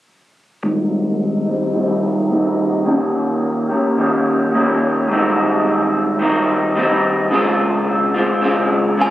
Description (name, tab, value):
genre	indie pop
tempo	108 BPM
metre	4/4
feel	swing 55% on 16ths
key	Ab major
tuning	A4 = 440 Hz
part	electric guitar through a small old amp	accompaniment	0.6-9.1 s	Ab2 to G4	-14 LUFS	equal	wide subtle chorus, vibrato effect, low-pass filter
part	glockenspiel with soft plastic mallets	melody	9.0-9.1 s	Ab5	-15 LUFS	equal	lush chorus
room	wet studio reverb, RT60 0.5 s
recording	recorded on a phone in the room, club reverb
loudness	-15 LUFS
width	side -14 dB against mid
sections	0.6-9.1 A section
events	filter sweep on clean electric guitar 0.6-9.1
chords	0.6 Abmaj7; 2.9 Eb7; 5.1 Abmaj7; 7.3 Dbmaj7